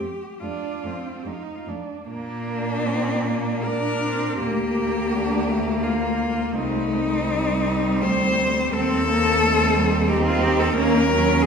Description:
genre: classical, lyrical piece for cello ensemble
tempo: 69-90 BPM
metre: 3/4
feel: rubato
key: Bb major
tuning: A4 = 441 Hz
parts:
  - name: clear cello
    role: melody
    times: 0.0-11.5 s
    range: D4 to C5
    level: -24 LUFS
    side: left 3 dB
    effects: none
  - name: warm cello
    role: second line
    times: 0.0-11.5 s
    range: A3 to Eb4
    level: -27 LUFS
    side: right 6 dB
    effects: none
  - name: rich cello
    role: accompaniment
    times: 0.0-11.5 s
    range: F#3 to D4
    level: -26 LUFS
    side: left 1 dB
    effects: none
  - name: warm cello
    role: bass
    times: 0.0-11.5 s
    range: C2 to Bb2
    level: -26 LUFS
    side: right 1 dB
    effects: none
room: wet recital hall reverb, RT60 1.6 s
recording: recorded in a church or concert hall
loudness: -19 LUFS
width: side -6 dB against mid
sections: 0.0-2.1 A section; 2.1-11.5 B section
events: none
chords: 0.0 F; 2.1 Bb; 4.4 Bb/D; 6.6 Cm; 8.7 Cm/Eb; 10.8 D#m7

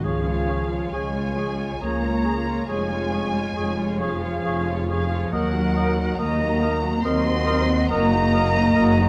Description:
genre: classical, slow romantic movement for symphony orchestra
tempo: 69 BPM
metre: 3/4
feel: rubato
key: Db major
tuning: A4 = 437 Hz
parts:
  - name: muted symphonic violin section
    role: melody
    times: 0.0-9.1 s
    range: F5 to C6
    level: -32 LUFS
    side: equal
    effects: none
  - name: bright concert flute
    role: second line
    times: 0.0-9.1 s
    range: Ab4 to Eb5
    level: -31 LUFS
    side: equal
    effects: none
  - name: mellow clarinet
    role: second line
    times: 0.0-8.9 s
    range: Ab4 to Bb4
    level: -36 LUFS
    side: equal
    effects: none
  - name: muted symphonic violin section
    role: second line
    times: 0.0-9.1 s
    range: Eb4 to Eb5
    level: -36 LUFS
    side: equal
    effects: none
  - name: muted symphonic viola section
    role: accompaniment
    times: 0.0-9.1 s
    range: Eb3 to F4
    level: -33 LUFS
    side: equal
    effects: none
  - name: dark French horn section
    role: sustained chords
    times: 0.0-9.1 s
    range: F3 to C4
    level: -30 LUFS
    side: equal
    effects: none
  - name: dark tuba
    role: bass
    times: 0.0-9.1 s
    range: F1 to Eb2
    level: -32 LUFS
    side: equal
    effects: none
  - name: muted symphonic cello section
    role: bass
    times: 0.0-9.1 s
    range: F3 to C4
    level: -30 LUFS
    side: equal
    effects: none
  - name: muted symphonic double bass section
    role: bass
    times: 0.0-9.1 s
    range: Gb1 to F2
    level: -30 LUFS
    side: equal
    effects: none
  - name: warm oboe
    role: second line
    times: 0.1-8.9 s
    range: Db5 to Eb5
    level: -36 LUFS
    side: equal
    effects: none
room: moderate scoring stage reverb, RT60 1.8 s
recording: none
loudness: -23 LUFS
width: mono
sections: 0.0-9.1 A section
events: none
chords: 0.0 Db; 2.7 Db/F; 5.3 Ebm; 7.9 Ebm/Gb

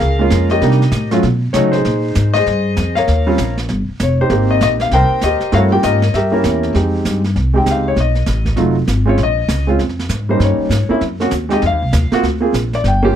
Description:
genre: jazz piano trio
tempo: 197 BPM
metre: 4/4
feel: swing 62% on 8ths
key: unclear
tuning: A4 = 435 Hz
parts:
  - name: warm concert grand piano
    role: melody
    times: 0.0-13.2 s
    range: Gb3 to G5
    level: -15 LUFS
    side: equal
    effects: none
  - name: upright bass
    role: bass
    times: 0.0-13.1 s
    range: F1 to C#3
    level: -16 LUFS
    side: equal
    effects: none
  - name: jazz brush drum kit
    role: drums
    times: 0.0-13.2 s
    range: brushed snare drum, hi-hat, kick drum, snare drum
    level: -24 LUFS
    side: right 3 dB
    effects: none
room: light reverb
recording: close, detailed microphones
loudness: -13 LUFS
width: side -9 dB against mid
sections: 0.0-6.7 A section; 6.7-13.2 B section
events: grand piano solo 6.7-13.2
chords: 0.0 Gbmaj9 (rootless); 0.6 Cm7; 1.2 B9; 1.9 Bb9sus4; 3.1 Eb9; 4.3 Abmaj9; 5.5 Gm7b5; 6.1 Edim7; 6.7 Fm9; 8.0 B7#11; 9.2 Bbm7; 10.4 Gdim; 11.0 N.C.; 11.6 F5; 12.2 Bb

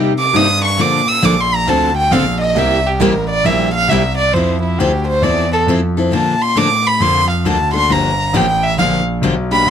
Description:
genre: acoustic string swing (jazz manouche)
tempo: 135 BPM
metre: 4/4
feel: swing 65% on 8ths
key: F major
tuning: A4 = 440 Hz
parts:
  - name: picked steel-string acoustic guitar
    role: accompaniment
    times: 0.0-9.7 s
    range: C3 to A4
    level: -18 LUFS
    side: left 4 dB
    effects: none
  - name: picked steel-string acoustic guitar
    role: accompaniment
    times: 0.0-4.0 s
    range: C3 to A4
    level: -20 LUFS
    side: right 9 dB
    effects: none
  - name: warm concert grand piano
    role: bass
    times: 0.0-9.7 s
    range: G1 to C3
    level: -18 LUFS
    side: equal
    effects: none
  - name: warm violin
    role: melody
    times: 0.2-9.7 s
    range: E4 to E6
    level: -15 LUFS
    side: right 1 dB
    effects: none
room: light reverb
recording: close, detailed microphones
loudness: -12 LUFS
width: side -8 dB against mid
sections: 0.0-4.3 A section; 4.3-9.7 A section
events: violin solo 0.0-9.7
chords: 0.0 Cm7; 0.8 Bbmaj7; 1.7 Dm7; 2.6 C7; 4.3 Fmaj7; 6.1 Bbmaj7; 7.9 Gm7

